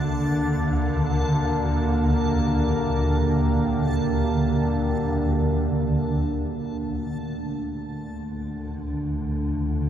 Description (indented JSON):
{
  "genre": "dark ambient drone",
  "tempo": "free time",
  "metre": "none",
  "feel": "none",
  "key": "D minor",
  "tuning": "A4 = 439 Hz",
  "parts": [
    { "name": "deep dark ambient pad", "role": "sustained chords", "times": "0.0-9.9 s", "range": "D3 to Bb4", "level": "-25 LUFS", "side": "right 1 dB", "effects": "chorus, built-in reverb" },
    { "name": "swarming drone", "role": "drone", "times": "0.0-9.9 s", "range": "D2 to D3", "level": "-24 LUFS", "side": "equal", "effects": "built-in reverb" },
    { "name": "backwards swelling texture", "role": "texture", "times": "0.0-6.6 s", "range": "A5", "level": "-36 LUFS", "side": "equal", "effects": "built-in reverb" }
  ],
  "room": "wet huge ambient reverb, RT60 8.0 s",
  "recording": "dark, warm production",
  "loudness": "-22 LUFS",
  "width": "side -10 dB against mid",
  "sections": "0.0-6.6 A section; 6.6-9.9 B section",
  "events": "none",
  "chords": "0.0 Gm/D; 6.6 Dm"
}